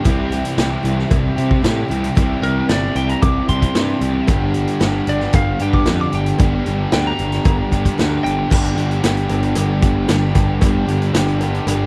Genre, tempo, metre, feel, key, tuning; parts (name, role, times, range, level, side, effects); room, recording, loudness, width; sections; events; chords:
classic rock; 114 BPM; 4/4; straight; G major; A4 = 442 Hz
lightly driven lead guitar; melody; 0.0-8.5 s; Bb4 to D6; -27 LUFS; equal
picked steel-string acoustic guitar; accompaniment; 0.0-11.9 s; G2 to G4; -32 LUFS; equal
biting overdriven guitar; riff; 0.0-11.9 s; G2 to G4; -26 LUFS; equal
distorted electric guitar; riff; 0.0-11.9 s; G2 to C4; -26 LUFS; equal; distortion
tonewheel organ; sustained chords; 0.1-11.9 s; B3 to G4; -36 LUFS; equal
fuzz picked electric bass; bass; 0.1-11.9 s; G1 to C3; -22 LUFS; equal; overdrive
raw garage drum kit; drums; 0.1-11.8 s; crash cymbal, hi-hat, kick drum, snare drum; -20 LUFS; equal
cowbell; percussion; 0.1-11.8 s; -36 LUFS; equal
small room ambience; dry, close 1970s-style studio recording; -17 LUFS; mono
0.0-8.5 A section; 8.5-11.9 B section
lead electric guitar solo 0.0-8.5
0.1 C; 4.3 G